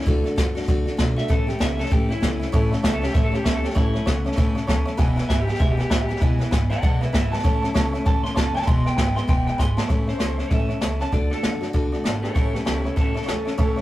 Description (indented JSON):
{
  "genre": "rockabilly",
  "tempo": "195 BPM",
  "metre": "4/4",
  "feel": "swing 61% on 8ths",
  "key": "A major",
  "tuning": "A4 = 440 Hz",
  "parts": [
    { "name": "electric guitar through a small old amp", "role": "melody", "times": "0.0-13.8 s", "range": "C#4 to C6", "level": "-28 LUFS", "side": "equal", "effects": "spring reverb" },
    { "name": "picked steel-string acoustic guitar", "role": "accompaniment", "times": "0.0-13.8 s", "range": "E2 to F#4", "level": "-27 LUFS", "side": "left 1 dB", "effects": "none" },
    { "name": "jazz brush drum kit", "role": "drums", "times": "0.0-13.8 s", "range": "hi-hat, kick drum, snare drum", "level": "-21 LUFS", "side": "equal", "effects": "none" },
    { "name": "upright bass", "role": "bass", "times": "0.1-13.8 s", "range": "E1 to F#2", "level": "-27 LUFS", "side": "equal", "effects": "none" },
    { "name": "honky-tonk upright piano", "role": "accompaniment", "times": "2.5-13.8 s", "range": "B4 to B5", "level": "-34 LUFS", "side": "right 1 dB", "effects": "none" }
  ],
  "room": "moderate small room reverb, RT60 0.6 s",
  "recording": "rough rehearsal-room recording",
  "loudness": "-19 LUFS",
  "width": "side -15 dB against mid",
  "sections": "0.0-9.9 A section; 9.9-13.8 B section",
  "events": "clean electric guitar solo 0.0-9.9; drum fill 9.6-9.9",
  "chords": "0.1 D; 1.3 A; 5.0 E; 7.4 A; 8.7 E; 9.9 A; 11.1 D; 12.4 A"
}